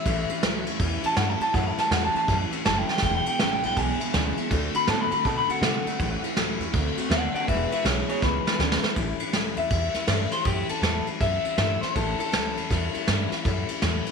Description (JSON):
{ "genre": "rockabilly", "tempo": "161 BPM", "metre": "4/4", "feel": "swing 64% on 8ths", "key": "A mixolydian", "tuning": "A4 = 440 Hz", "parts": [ { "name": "electric guitar through a small old amp", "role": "melody", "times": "0.0-13.3 s", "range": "G4 to B5", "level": "-27 LUFS", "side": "left 2 dB", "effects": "tape echo" }, { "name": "picked steel-string acoustic guitar", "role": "accompaniment", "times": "0.0-14.1 s", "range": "E2 to F#4", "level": "-32 LUFS", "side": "left 12 dB", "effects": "none" }, { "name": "electric guitar through a small old amp", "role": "riff", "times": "0.0-9.0 s", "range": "E2 to B3", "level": "-33 LUFS", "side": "right 14 dB", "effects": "analog chorus" }, { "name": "upright bass", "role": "bass", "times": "0.1-14.1 s", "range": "E1 to C3", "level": "-29 LUFS", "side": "right 1 dB", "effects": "none" }, { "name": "soft brush drum kit", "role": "drums", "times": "0.1-14.1 s", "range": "kick drum, ride cymbal, snare drum", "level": "-26 LUFS", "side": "right 1 dB", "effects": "none" } ], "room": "light reverb, small room ambience", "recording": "1960s-style stereo with parts hard left and right", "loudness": "-22 LUFS", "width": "side -5 dB against mid", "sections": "0.0-9.0 A section; 9.0-14.1 B section", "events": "clean electric guitar solo 0.0-9.0; drum fill 2.8, 8.2-9.0", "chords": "0.0 A7; 3.0 E7; 4.5 D7; 6.0 A7; 6.7 D7; 7.5 E7; 9.0 A7", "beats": "| 0.05 0.42 0.79 1.16 | 1.53 1.91 2.28 2.65 | 3.02 3.39 3.76 4.14 | 4.51 4.88 5.25 5.62 | 6.00 6.37 6.74 7.11 | 7.48 7.86 8.23 8.60 | 8.97 9.35 9.72 10.09 | 10.47 10.84 11.21 11.59 | 11.96 12.33 12.71 13.08 | 13.45 13.83" }